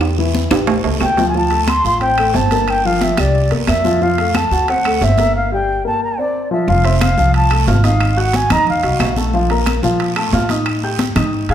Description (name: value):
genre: Afro-Cuban jazz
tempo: 180 BPM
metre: 4/4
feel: straight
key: F major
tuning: A4 = 440 Hz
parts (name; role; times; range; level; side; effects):
- dark baby grand piano; accompaniment; 0.0-11.5 s; E3 to Ab6; -19 LUFS; left 2 dB; none
- upright bass; bass; 0.0-11.5 s; F1 to Bb2; -18 LUFS; equal; none
- claves; percussion; 0.0-11.3 s; none; -30 LUFS; left 3 dB; none
- congas; percussion; 0.0-11.5 s; none; -23 LUFS; left 2 dB; none
- guiro; percussion; 0.0-11.5 s; none; -30 LUFS; right 8 dB; none
- timbales; percussion; 0.0-11.5 s; none; -23 LUFS; right 6 dB; none
- mellow concert flute; melody; 1.0-9.1, 11.5 s; D5 to C6; -17 LUFS; equal; none
room: moderate recital hall reverb, RT60 1.4 s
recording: recorded in a church or concert hall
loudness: -13 LUFS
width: side -10 dB against mid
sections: 0.0-6.7 A section; 6.7-11.5 B section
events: drum fill 0.0-1.3; break 5.3-6.7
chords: 0.0 Em; 0.7 A7; 1.3 Dm7; 2.7 Gm7; 3.3 C7; 4.0 F6; 4.7 D7; 5.3 Gm; 6.0 Bbadd9; 6.7 F; 8.0 Ab7sus2; 9.3 Bb5; 10.7 Ebadd11